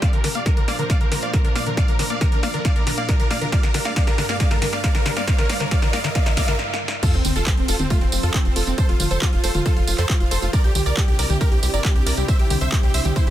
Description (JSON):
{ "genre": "uplifting trance", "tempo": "137 BPM", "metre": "4/4", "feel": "straight", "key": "F major", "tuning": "A4 = 440 Hz", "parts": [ { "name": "big supersaw lead", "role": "melody", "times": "0.0-13.3 s", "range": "A3 to F5", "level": "-26 LUFS", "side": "right 1 dB", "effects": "sidechain pumping, low-pass filter, digital delay" }, { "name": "wide unison pluck", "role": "second line", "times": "0.0-13.3 s", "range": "C4 to F5", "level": "-32 LUFS", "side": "equal", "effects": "cassette tape, sidechain pumping, ping-pong delay" }, { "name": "lush unison pad", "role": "sustained chords", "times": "0.0-13.3 s", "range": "G2 to D5", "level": "-32 LUFS", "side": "equal", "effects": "chorus, sidechain pumping" }, { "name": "liquid acid bass", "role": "arpeggios", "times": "0.0-6.5 s", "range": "D3 to Bb3", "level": "-29 LUFS", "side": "left 3 dB", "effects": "lush chorus, sidechain pumping, ping-pong delay" }, { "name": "electronic kick drum", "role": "drums", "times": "0.0-13.2 s", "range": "none", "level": "-19 LUFS", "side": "equal", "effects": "overdrive, small room ambience" }, { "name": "techno drum kit", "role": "drums", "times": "0.0-13.3 s", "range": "crash cymbal, handclaps, hi-hat, snare drum, tambourine, toms", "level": "-26 LUFS", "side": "equal", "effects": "overdrive, sidechain pumping on hats, high-pass filter on hats, small room ambience, high-pass filter on snare, sidechain pumping on toms, high-pass filter on toms, sidechain pumping on cymbals, high-pass filter on cymbals, sidechain pumping on perc, high-pass filter on perc" }, { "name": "riser and sub drop", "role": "sound effects", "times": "2.2-8.8 s", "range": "none", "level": "-32 LUFS", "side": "equal", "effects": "none" }, { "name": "tight sequencer bass", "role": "bass", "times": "7.1-13.3 s", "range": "F1 to F2", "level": "-23 LUFS", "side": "equal", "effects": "sidechain pumping" } ], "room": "little or no reverb", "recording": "dense, heavily limited modern master", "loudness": "-17 LUFS", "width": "side -12 dB against mid", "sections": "0.0-7.0 A section; 7.0-13.3 B section", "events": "build-up 0.0-7.0; drum fill 0.0-6.6, 6.6-7.0; filter sweep on acid bass 0.0-7.0; riser 2.2-6.6; stop 6.6-7.0; drop 7.0-13.3; impact 7.0-8.8", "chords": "0.0 Bbadd9; 3.5 Gm; 7.0 F; 10.5 Cadd9" }